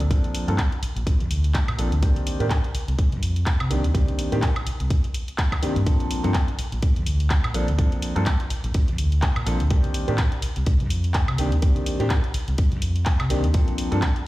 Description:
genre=filtered disco house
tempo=125 BPM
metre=4/4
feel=swing 57% on 16ths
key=Bb major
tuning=A4 = 439 Hz
part: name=overdriven fingered electric bass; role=bass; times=0.0-14.0 s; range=Bb1 to C3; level=-23 LUFS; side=equal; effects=sidechain pumping, low-pass filter
part: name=house drum kit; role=drums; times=0.0-14.2 s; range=handclaps, hi-hat, woodblock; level=-31 LUFS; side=equal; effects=sidechain pumping on hats, sidechain pumping on perc
part: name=warm grand piano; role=accompaniment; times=0.1-14.0 s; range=Eb3 to A4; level=-27 LUFS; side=equal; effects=phaser, sidechain pumping, low-pass filter
part: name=electronic kick drum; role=drums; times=0.1-14.1 s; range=none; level=-22 LUFS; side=equal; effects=none
room=little or no reverb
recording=played on a big sound system in a bare room, stone room reverb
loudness=-20 LUFS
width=side -17 dB against mid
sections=0.0-14.3 A section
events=filter sweep 0.0-14.3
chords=0.0 Bbmaj7; 2.0 Cm9; 5.9 Bbmaj7; 9.7 Cm9; 13.5 Bbmaj7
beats=| 0.10 0.58 1.06 1.54 | 2.02 2.50 2.98 3.46 | 3.94 4.42 4.91 5.38 | 5.87 6.34 6.83 7.30 | 7.79 8.27 8.74 9.22 | 9.71 10.19 10.66 11.14 | 11.62 12.11 12.59 13.06 | 13.54 14.03

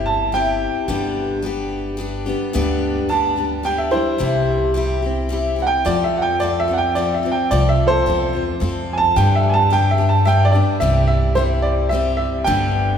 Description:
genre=honky-tonk and classic country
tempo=109 BPM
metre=3/4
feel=straight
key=C major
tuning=A4 = 440 Hz
part: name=clear upright piano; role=melody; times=0.0-13.0 s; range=E4 to A5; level=-19 LUFS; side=right 1 dB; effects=none
part: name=picked steel-string acoustic guitar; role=accompaniment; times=0.0-13.0 s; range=G2 to A4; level=-22 LUFS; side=left 3 dB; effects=none
part: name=upright bass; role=bass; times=0.0-13.0 s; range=G1 to G2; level=-21 LUFS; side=equal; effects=none
room=wet church reverb, RT60 3.6 s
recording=recorded in a church or concert hall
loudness=-16 LUFS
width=side -8 dB against mid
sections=0.0-10.8 A section; 10.8-13.0 B section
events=upright piano solo 0.0-10.8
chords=0.0 C; 0.9 G; 4.2 C; 5.9 F; 9.2 G; 10.8 C; 12.5 G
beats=0.33 | 0.89 1.44 1.99 | 2.54 3.10 3.65 | 4.20 4.75 5.31 | 5.86 6.41 6.96 | 7.51 8.07 8.62 | 9.17 9.72 10.27 | 10.82 11.37 11.92 | 12.47

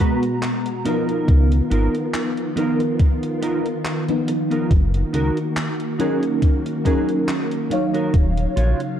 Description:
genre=vaporwave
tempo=70 BPM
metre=4/4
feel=swing 54% on 16ths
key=F# major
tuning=A4 = 438 Hz
part: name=FM electric piano with soft pad layer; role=accompaniment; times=0.0-9.0 s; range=E#3 to A#5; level=-23 LUFS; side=equal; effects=tremolo, ensemble chorus, tape echo
part: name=soft string machine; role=sustained chords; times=0.0-9.0 s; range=B2 to E#5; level=-26 LUFS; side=left 1 dB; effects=ensemble chorus
part: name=mellow electric guitar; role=riff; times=0.0-8.8 s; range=B3 to C#5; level=-26 LUFS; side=right 3 dB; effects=analog chorus, tape echo
part: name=electronic kick drum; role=drums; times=0.0-8.3 s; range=none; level=-16 LUFS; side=equal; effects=studio ambience
part: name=gated 80s digital drum machine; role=drums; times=0.0-9.0 s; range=handclaps, hi-hat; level=-31 LUFS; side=equal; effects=gated reverb, studio ambience
part: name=chorused synth bass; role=bass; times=1.3-8.7 s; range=D#1 to C#2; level=-18 LUFS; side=equal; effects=tube saturation
room=light reverb, digital ambience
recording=dark, warm production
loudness=-18 LUFS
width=side -10 dB against mid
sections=0.0-9.0 A section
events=none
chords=0.0 G#m9; 0.9 C#13 (rootless); 4.7 F#6; 8.1 D#m9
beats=0.43 | 1.28 2.14 3.00 3.86 | 4.71 5.57 6.43 7.28 | 8.14 9.00

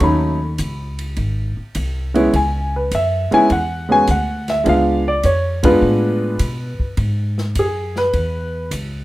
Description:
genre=jazz piano trio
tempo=103 BPM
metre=4/4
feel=swing 69% on 8ths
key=unclear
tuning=A4 = 440 Hz
part: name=clear concert grand piano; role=melody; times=0.0-8.7 s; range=F#3 to B5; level=-16 LUFS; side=equal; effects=none
part: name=upright bass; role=bass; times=0.0-9.0 s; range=G#1 to B2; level=-21 LUFS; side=equal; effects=none
part: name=open jazz drum kit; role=drums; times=0.0-8.9 s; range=hi-hat, kick drum, ride cymbal, snare drum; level=-27 LUFS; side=equal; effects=none
room=wet studio ambience, RT60 0.5 s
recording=rough home demo mix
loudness=-16 LUFS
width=side -17 dB against mid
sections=0.0-7.0 A section; 7.0-9.0 B section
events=band accent 5.5; grand piano solo 7.0-9.0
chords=0.0 D#m7b5; 1.2 G#; 2.3 C#m7; 4.7 C#7b9; 7.0 C#m7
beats=| 0.01 0.59 1.17 1.75 | 2.33 2.92 3.50 4.08 | 4.66 5.24 5.82 6.40 | 6.98 7.56 8.14 8.72

